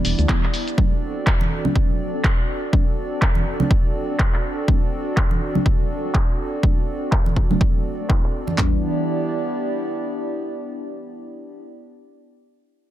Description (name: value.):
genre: deep house.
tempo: 123 BPM.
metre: 4/4.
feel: swing 57% on 16ths.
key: E minor.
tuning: A4 = 438 Hz.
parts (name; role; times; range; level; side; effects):
hollow soft pad; sustained chords; 0.0-11.6 s; B3 to D5; -27 LUFS; right 1 dB; chorus, sidechain pumping.
deep mellow chord stab; stabs; 0.0-11.6 s; E3 to E4; -26 LUFS; right 1 dB; chorus, sidechain pumping, ping-pong delay.
punchy analog drum machine; drums; 0.0-8.3 s; handclaps, hi-hat, shaker; -27 LUFS; equal; low-pass filter on hats, low-pass filter on cymbals, low-pass filter on perc, low-pass filter on snare.
punchy analog drum machine; drums; 0.3-8.7 s; handclaps, kick drum, toms; -19 LUFS; equal; soft clipping on snare.
congas; percussion; 1.4-8.6 s; none; -28 LUFS; right 4 dB; none.
room: light reverb, digital ambience.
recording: dense, heavily limited modern master.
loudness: -18 LUFS.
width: side -12 dB against mid.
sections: 0.0-8.6 A section; 8.6-12.5 B section.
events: filter sweep on drum 0.0-8.6.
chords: 0.0 Em7; 0.8 D7; 8.6 Em7.